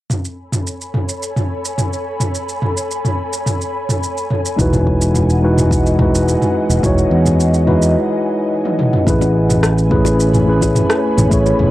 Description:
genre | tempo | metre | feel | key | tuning
sunset chillout | 107 BPM | 4/4 | straight | A lydian | A4 = 441 Hz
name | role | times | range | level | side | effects
ethereal airy pad | sustained chords | 0.6-11.7 s | E3 to B5 | -23 LUFS | equal | ensemble chorus, built-in reverb, cassette tape
deep house drum kit | drums | 0.1-11.7 s | rim click, shaker, toms | -19 LUFS | equal | overdrive, cassette tape
mellow tine electric piano | accompaniment | 4.6-11.7 s | G#3 to C#5 | -16 LUFS | equal | auto-pan, low-pass filter, cassette tape, tape echo
fingered electric bass | bass | 4.6-11.7 s | E1 to E2 | -15 LUFS | equal | none
electronic kick drum | drums | 4.6-11.4 s | none | -19 LUFS | equal | overdrive, cassette tape
bongos | percussion | 9.2-11.6 s | none | -24 LUFS | left 12 dB | none
room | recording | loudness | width
light reverb | home recording on cassette | -13 LUFS | side -16 dB against mid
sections
0.1-9.1 A section; 9.1-11.7 B section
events
break 8.0-9.1; drum fill 8.7-9.1; filter sweep on tine electric piano 9.1-11.7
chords
0.1 Amaj9; 4.6 Emaj9; 9.1 Amaj9

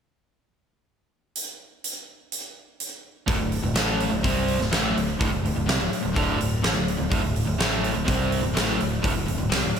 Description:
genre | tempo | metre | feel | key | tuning
classic rock | 125 BPM | 4/4 | straight | unclear | A4 = 440 Hz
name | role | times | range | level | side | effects
huge arena drum kit | drums | 1.4-9.8 s | hi-hat, kick drum, snare drum | -26 LUFS | equal | none
cranked stack guitar | riff | 3.3-9.8 s | D2 to C4 | -27 LUFS | right 8 dB | overdrive
overdriven semi-hollow guitar | riff | 3.3-9.8 s | D2 to C4 | -28 LUFS | left 8 dB | none
growling fingered electric bass | bass | 3.3-9.8 s | D1 to C2 | -30 LUFS | equal | overdrive
room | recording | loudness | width
moderate lush hall reverb, RT60 1.8 s, studio reverb | none | -22 LUFS | side -7 dB against mid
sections
1.3-3.3 A section; 3.3-9.8 B section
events
none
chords
1.3 N.C.; 3.3 D5

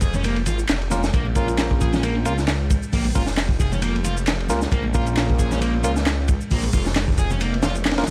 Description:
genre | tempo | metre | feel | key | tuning
breakbeat, breaks | 134 BPM | 4/4 | swing 56% on 16ths | Bb minor | A4 = 440 Hz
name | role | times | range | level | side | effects
fuzz guitar | riff | 0.0-7.7 s | Bb3 to Ab4 | -31 LUFS | equal | distortion, tube saturation, tape echo
phased detuned saw bass | bass | 0.0-8.1 s | F1 to Db2 | -26 LUFS | equal | phaser, tube saturation
crunchy breakbeat drum kit | drums | 0.0-8.1 s | hi-hat, kick drum, ride cymbal, snare drum | -25 LUFS | equal | none
electronic shaker and handclaps | drums | 0.0-8.1 s | none | -34 LUFS | equal | overdrive
congas | percussion | 0.1-8.1 s | none | -34 LUFS | equal | none
barky tine electric piano | stabs | 0.9-8.0 s | Bb3 to Bb4 | -29 LUFS | equal | vintage 12-bit sampler grit, tape echo
room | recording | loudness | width
studio ambience | vinyl crackle | -21 LUFS | mono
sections
0.0-8.1 A section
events
band accent 7.9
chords
0.0 Bbm

